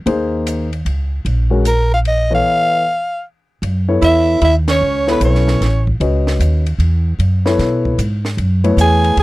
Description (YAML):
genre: modal jazz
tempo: 152 BPM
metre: 3/4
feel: swing 66% on 8ths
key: F# dorian from 3.6 s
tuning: A4 = 440 Hz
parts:
  - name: upright bass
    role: bass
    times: 0.0-9.2 s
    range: A1 to B2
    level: -15 LUFS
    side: equal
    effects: none
  - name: dark concert grand piano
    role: accompaniment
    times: 0.1-9.1 s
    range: Fb3 to D#5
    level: -18 LUFS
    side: left 3 dB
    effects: none
  - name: compact cocktail drum kit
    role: drums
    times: 0.1-9.2 s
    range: hi-hat, kick drum, ride cymbal, snare drum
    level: -27 LUFS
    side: equal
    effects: none
  - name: growling soprano saxophone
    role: melody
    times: 1.7-5.8, 8.8-9.2 s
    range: Bb4 to G#5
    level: -16 LUFS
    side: equal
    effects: none
  - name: breathy alto saxophone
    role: second line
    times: 4.0-5.8, 8.8-9.2 s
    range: B3 to G#4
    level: -19 LUFS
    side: right 6 dB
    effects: none
room: little or no reverb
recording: dry, close 1970s-style studio recording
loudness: -13 LUFS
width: side -18 dB against mid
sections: 0.0-3.6 A section; 3.6-9.2 B section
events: break 2.4-3.6; band accent 4.6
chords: 0.0 Eb7(no3); 2.4 Db7alt; 3.6 F#m11